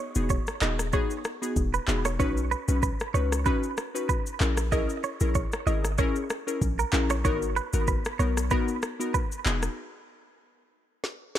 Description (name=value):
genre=afrobeats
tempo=95 BPM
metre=4/4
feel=swing 55% on 16ths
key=unclear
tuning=A4 = 440 Hz
part: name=clean electric guitar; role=riff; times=0.0-9.4 s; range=A#4 to D#5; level=-32 LUFS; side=right 10 dB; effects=spring reverb, digital delay
part: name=glassy digital keys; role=accompaniment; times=0.2-9.6 s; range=B3 to B4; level=-30 LUFS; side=left 3 dB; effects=chorus
part: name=warm 808-style bass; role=bass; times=0.2-9.7 s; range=D#1 to C#2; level=-27 LUFS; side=equal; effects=none
part: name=afro-pop drum kit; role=drums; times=0.2-11.4 s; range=handclaps, kick drum, rim click, shaker, snare drum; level=-29 LUFS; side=equal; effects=none
room=digital ambience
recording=none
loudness=-25 LUFS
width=side -11 dB against mid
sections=0.0-11.4 A section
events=break 9.8-11.4; drum fill 11.0-11.4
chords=0.0 Emaj7; 2.2 Badd9; 4.4 C#m6; 7.2 G#m7; 9.5 Emaj7